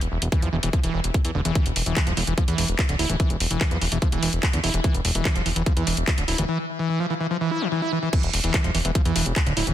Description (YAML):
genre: psychedelic trance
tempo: 146 BPM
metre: 4/4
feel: straight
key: unclear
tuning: A4 = 438 Hz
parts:
  - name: fat analog bass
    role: bass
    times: 0.0-9.7 s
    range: D1 to E2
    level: -25 LUFS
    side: equal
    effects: none
  - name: garage drum kit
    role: drums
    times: 0.0-9.7 s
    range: crash cymbal, handclaps, hi-hat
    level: -26 LUFS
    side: equal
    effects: none
  - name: screaming distorted acid line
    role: riff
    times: 0.3-9.7 s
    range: D3 to E4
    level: -26 LUFS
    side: moving between left 2 dB and right 4 dB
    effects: distortion, chorus, auto-pan, sidechain pumping, ping-pong delay
  - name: electronic kick drum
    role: drums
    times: 0.3-9.4 s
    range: none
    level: -22 LUFS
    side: equal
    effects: none
room: light reverb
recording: dense, heavily limited modern master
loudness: -20 LUFS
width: side -12 dB against mid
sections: 0.0-8.1 A section; 8.1-9.7 B section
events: break 6.5-8.1; drop 8.1-9.7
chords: 0.0 Dsus2